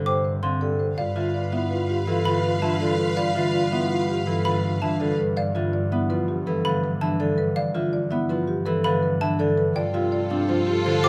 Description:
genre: classical, minimalist pattern music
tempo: 164 BPM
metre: 6/4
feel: straight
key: G mixolydian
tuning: A4 = 440 Hz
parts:
  - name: marimba with medium mallets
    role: melody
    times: 0.0-11.1 s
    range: G4 to G5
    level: -33 LUFS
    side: equal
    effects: none
  - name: Celtic harp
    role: accompaniment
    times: 0.0-11.1 s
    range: C3 to C4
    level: -29 LUFS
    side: equal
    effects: none
  - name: vibraphone with soft mallets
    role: arpeggios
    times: 0.0-11.1 s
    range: C4 to C5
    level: -29 LUFS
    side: equal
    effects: none
  - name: rich studio double bass section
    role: bass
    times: 0.0-11.1 s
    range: G2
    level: -31 LUFS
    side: equal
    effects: none
  - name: xylophone with plastic mallets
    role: arpeggios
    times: 0.1-11.1 s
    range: F5 to D6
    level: -32 LUFS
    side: equal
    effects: none
  - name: warm French horn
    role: second line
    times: 1.0-5.1, 9.8-11.1 s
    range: F4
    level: -32 LUFS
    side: equal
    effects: none
  - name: warm studio violin section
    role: sustained chords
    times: 1.0-5.1, 9.8-11.1 s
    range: F4 to F5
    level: -33 LUFS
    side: equal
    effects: none
room: light reverb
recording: close, detailed microphones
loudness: -24 LUFS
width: mono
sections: 0.0-11.1 A section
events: none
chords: 0.0 Fadd9/G; 1.0 G9; 9.8 Fadd9/G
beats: 0.25 0.61 | 0.98 1.34 1.71 2.08 2.44 2.81 | 3.17 3.54 3.90 4.27 4.64 5.00 | 5.37 5.73 6.10 6.46 6.83 7.20 | 7.56 7.93 8.29 8.66 9.03 9.39 | 9.76 10.12 10.49 10.86

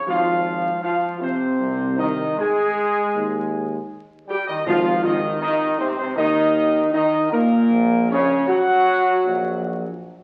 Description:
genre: classical, ceremonial fanfare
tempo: 79 BPM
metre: 4/4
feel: straight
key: Ab major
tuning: A4 = 440 Hz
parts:
  - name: mellow trumpet section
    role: melody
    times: 0.0-10.0 s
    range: Bb4 to Ab5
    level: -27 LUFS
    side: equal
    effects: none
  - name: bright trombone section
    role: sustained chords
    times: 0.1-10.0 s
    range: Bb2 to Ab3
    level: -28 LUFS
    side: equal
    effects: none
  - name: mellow French horn section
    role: sustained chords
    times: 0.1-10.0 s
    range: Bb3 to Ab4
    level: -23 LUFS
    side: equal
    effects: none
  - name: warm tuba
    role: bass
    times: 0.1-9.9 s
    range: Ab1 to Eb2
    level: -31 LUFS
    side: equal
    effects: none
  - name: timpani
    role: percussion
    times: 4.7-5.8 s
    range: Ab2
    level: -38 LUFS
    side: equal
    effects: none
room: wet recital hall reverb, RT60 1.4 s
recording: very old 78 rpm record, vinyl crackle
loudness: -20 LUFS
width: mono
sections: 0.0-10.2 A section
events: none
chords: 0.0 Db (rootless); 1.6 Ab/C; 3.2 Ebadd11; 4.7 Ab5; 7.7 Gb/Bb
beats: 0.07 0.83 | 1.60 2.38 3.15 3.91 | 4.67 5.42 6.18 6.94 | 7.71 8.49 9.25

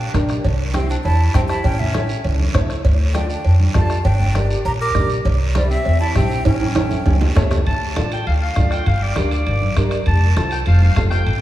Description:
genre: latin, cumbia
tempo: 199 BPM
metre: 4/4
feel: straight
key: D minor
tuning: A4 = 440 Hz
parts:
  - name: breathy hollow jazz flute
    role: melody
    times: 0.0-7.3 s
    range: D5 to D6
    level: -26 LUFS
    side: right 1 dB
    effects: none
  - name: clear clarinet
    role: second line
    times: 0.0-11.4 s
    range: G3 to A5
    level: -26 LUFS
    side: left 1 dB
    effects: none
  - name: upright bass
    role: bass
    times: 0.0-11.4 s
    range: F1 to F2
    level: -18 LUFS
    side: equal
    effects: none
  - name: warm upright piano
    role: accompaniment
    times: 0.1-11.2 s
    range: C4 to E5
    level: -27 LUFS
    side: left 1 dB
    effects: analog chorus
  - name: bombo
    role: percussion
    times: 0.1-11.4 s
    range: none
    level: -20 LUFS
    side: equal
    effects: none
  - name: congas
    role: percussion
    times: 0.1-11.4 s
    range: none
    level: -27 LUFS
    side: right 2 dB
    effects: none
  - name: cowbell and timbales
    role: percussion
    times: 0.1-11.4 s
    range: none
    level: -29 LUFS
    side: right 4 dB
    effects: none
  - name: guiro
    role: percussion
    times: 0.1-11.4 s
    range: none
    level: -34 LUFS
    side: right 4 dB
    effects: none
room: moderate lush hall reverb, RT60 2.5 s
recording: dreamy mix soaked in reverb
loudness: -15 LUFS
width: side -14 dB against mid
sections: 0.0-7.7 A section; 7.7-11.4 B section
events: drum fill 6.5-7.7; clarinet solo 7.7-11.4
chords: 0.4 C; 1.6 A; 2.8 Dm; 4.1 Gm; 5.3 C; 6.5 A7; 7.7 Dm; 8.9 Gm; 10.1 F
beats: 0.14 | 0.44 0.74 1.04 1.34 | 1.64 1.94 2.25 2.55 | 2.85 3.15 3.45 3.75 | 4.05 4.35 4.65 4.96 | 5.25 5.56 5.86 6.16 | 6.46 6.76 7.06 7.36 | 7.66 7.96 8.26 8.56 | 8.86 9.16 9.46 9.77 | 10.06 10.37 10.67 10.97 | 11.27

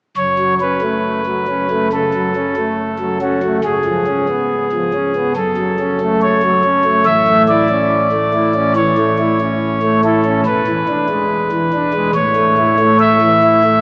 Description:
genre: classical, chorale-style piece for pipe organ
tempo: 70 BPM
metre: 4/4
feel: rubato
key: F# minor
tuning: A4 = 440 Hz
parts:
  - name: pipe organ, principal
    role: solo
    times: 0.2-13.8 s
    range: C#1 to E5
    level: -12 LUFS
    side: equal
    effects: none
room: wet church reverb, RT60 3.5 s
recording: small speaker sound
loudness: -12 LUFS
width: side -32 dB against mid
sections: 0.2-13.8 A section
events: none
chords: 0.2 F#m; 3.6 C#7; 5.4 F#m; 7.1 A; 10.5 E7; 12.2 A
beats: | 0.17 1.05 1.92 2.79 | 3.64 4.50 5.37 6.23 | 7.08 7.92 8.77 9.63 | 10.47 11.31 12.16 13.01

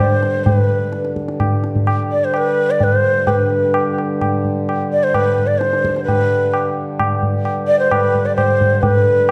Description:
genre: indian classical, Hindustani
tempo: 129 BPM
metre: 3/4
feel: straight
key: unclear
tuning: A4 = 440 Hz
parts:
  - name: breathy hollow bansuri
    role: melody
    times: 0.0-9.3 s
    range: B4-27c to D5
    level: -18 LUFS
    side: equal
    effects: none
  - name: pedal harmonium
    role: drone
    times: 0.0-9.3 s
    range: G2 to D3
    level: -25 LUFS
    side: equal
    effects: none
  - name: tabla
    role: percussion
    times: 0.0-9.3 s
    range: none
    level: -21 LUFS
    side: equal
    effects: none
room: wet recital hall reverb, RT60 1.4 s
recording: dark, warm production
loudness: -16 LUFS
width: mono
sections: 0.0-8.8 A section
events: none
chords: none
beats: | 0.46 0.93 1.40 | 1.87 2.34 2.81 | 3.28 3.75 4.21 | 4.68 5.14 5.61 | 6.07 6.53 6.99 | 7.46 7.92 8.38 | 8.83 9.29

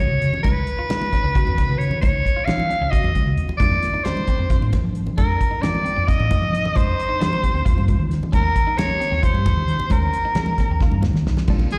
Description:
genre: electric jazz fusion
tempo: 266 BPM (eighths)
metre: 7/8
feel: straight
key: unclear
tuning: A4 = 439 Hz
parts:
  - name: growling soprano saxophone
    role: melody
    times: 0.0-11.8 s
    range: Ab4 to F5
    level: -25 LUFS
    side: equal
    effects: slapback echo, plate reverb
  - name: tine electric piano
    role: accompaniment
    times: 0.0-11.8 s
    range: D3 to Ab4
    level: -33 LUFS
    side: equal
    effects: overdrive, plate reverb, slapback echo
  - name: hollow-body short-scale fingered electric bass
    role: bass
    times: 0.0-11.7 s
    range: Bb1 to F3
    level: -23 LUFS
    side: equal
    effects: none
  - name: congas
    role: percussion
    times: 0.0-11.7 s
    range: none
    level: -30 LUFS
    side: equal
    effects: slapback echo
  - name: damped 70s drum kit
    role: drums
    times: 0.2-11.8 s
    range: crash cymbal, hi-hat, kick drum, snare drum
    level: -24 LUFS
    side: equal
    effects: none
  - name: clean electric guitar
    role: stabs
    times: 0.4-11.7 s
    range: C4 to Gb4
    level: -37 LUFS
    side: equal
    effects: subtle chorus, plate reverb, slapback echo
room: light reverb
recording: live gig heard through the venue's PA, recital hall reverb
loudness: -20 LUFS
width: mono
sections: 0.0-11.5 A section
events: drum fill 10.8-11.5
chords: 0.0 Db9sus4; 3.6 F9sus4; 7.7 Eb9sus4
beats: 0.00 0.22 | 0.45 0.68 0.90 1.13 1.35 1.58 1.80 | 2.03 2.25 2.48 2.71 2.93 3.16 3.38 | 3.61 3.83 4.06 4.28 4.51 4.73 4.96 | 5.18 5.41 5.63 5.86 6.08 6.31 6.53 | 6.76 6.98 7.21 7.43 7.66 7.88 8.11 | 8.33 8.56 8.78 9.01 9.23 9.46 9.68 | 9.91 10.13 10.36 10.59 10.81 11.04 11.26 | 11.48 11.71

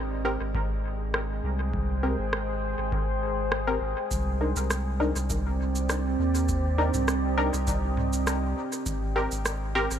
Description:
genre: ambient dub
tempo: 101 BPM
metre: 4/4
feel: straight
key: C minor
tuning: A4 = 440 Hz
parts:
  - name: deep dark ambient pad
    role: sustained chords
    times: 0.0-10.0 s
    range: Ab3 to G5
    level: -31 LUFS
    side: right 2 dB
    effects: chorus, built-in reverb
  - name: warm sub bass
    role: bass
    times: 0.0-10.0 s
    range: Ab1 to Eb2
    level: -28 LUFS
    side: equal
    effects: none
  - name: filtered dub chord stab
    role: stabs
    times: 0.2-9.9 s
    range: C4 to Bb4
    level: -32 LUFS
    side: left 1 dB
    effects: chorus, dub echo
  - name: electronic kick drum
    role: drums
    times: 0.5-9.0 s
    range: none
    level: -33 LUFS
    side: equal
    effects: small room ambience
  - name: organic electronic drum kit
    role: drums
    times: 1.1-10.0 s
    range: rim click, shaker, toms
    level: -33 LUFS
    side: equal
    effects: small room ambience, dub echo
room: light reverb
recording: none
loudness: -25 LUFS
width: side -9 dB against mid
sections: 0.0-10.0 A section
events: none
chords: 0.0 Abmaj7; 4.1 Cm7; 8.9 Abmaj7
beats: 0.55 1.14 | 1.74 2.33 2.92 3.52 | 4.11 4.71 5.30 5.89 | 6.49 7.08 7.67 8.27 | 8.86 9.46

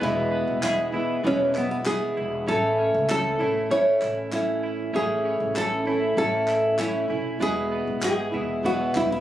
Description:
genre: acoustic pop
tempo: 97 BPM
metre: 4/4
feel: straight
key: E major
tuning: A4 = 441 Hz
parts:
  - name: nylon-string guitar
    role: melody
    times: 0.0-9.2 s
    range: B3 to C#5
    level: -24 LUFS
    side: equal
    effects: plate reverb
  - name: fingerpicked plugged-in steel-string acoustic guitar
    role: accompaniment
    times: 0.0-9.2 s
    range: E2 to E4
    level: -26 LUFS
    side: left 1 dB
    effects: none
  - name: twelve-string electric guitar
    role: arpeggios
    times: 0.0-9.2 s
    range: B3 to A4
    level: -34 LUFS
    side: right 4 dB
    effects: none
  - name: upright bass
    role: bass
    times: 0.0-9.2 s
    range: E1 to C#2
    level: -35 LUFS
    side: right 1 dB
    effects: none
  - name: group handclap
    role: percussion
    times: 0.6-9.1 s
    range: none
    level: -34 LUFS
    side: left 1 dB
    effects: none
room: light reverb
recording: recorded on a phone in the room, studio ambience, compression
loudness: -22 LUFS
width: side -12 dB against mid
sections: 0.0-9.2 A section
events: none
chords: 0.0 E; 2.5 A; 7.4 E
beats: | 0.01 0.63 1.25 1.86 | 2.48 3.09 3.71 4.33 | 4.94 5.56 6.18 6.79 | 7.41 8.03 8.64

